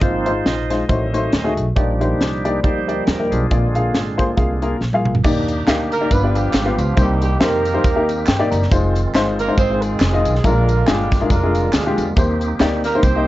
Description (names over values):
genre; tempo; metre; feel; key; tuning
uptempo gospel; 139 BPM; 4/4; swing 57% on 8ths; Eb major; A4 = 440 Hz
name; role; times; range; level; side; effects
warm upright piano; accompaniment; 0.0-13.3 s; G2 to Bb5; -20 LUFS; left 2 dB; none
bright tonewheel organ; sustained chords; 0.0-13.3 s; D3 to Eb5; -25 LUFS; right 2 dB; fast rotary speaker
upright bass; bass; 0.0-13.3 s; F1 to G2; -21 LUFS; equal; none
crisp fusion drum kit; drums; 0.0-13.1 s; crash cymbal, hi-hat, kick drum, snare drum, toms; -19 LUFS; equal; none
tambourine and handclaps; percussion; 5.3-13.1 s; none; -33 LUFS; right 2 dB; none
mellow horn section; melody; 5.9-13.3 s; F3 to C5; -22 LUFS; right 3 dB; none
room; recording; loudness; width
little or no reverb; worn, warbling old tape, cassette tape, warbly pitch drift, nothing above 7.7 kHz; -15 LUFS; side -16 dB against mid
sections
0.0-5.2 A section; 5.2-13.3 B section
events
tonewheel organ solo 0.0-5.2; drum fill 4.8-5.2; upright piano fill 8.1-8.7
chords
0.0 Ab6; 0.9 Adim7; 1.8 Ebmaj7/Bb; 3.5 Bb7; 5.2 Ebmaj7; 6.1 G7; 7.0 Cm7; 8.7 Fm7; 10.4 Bb7; 12.2 Eb6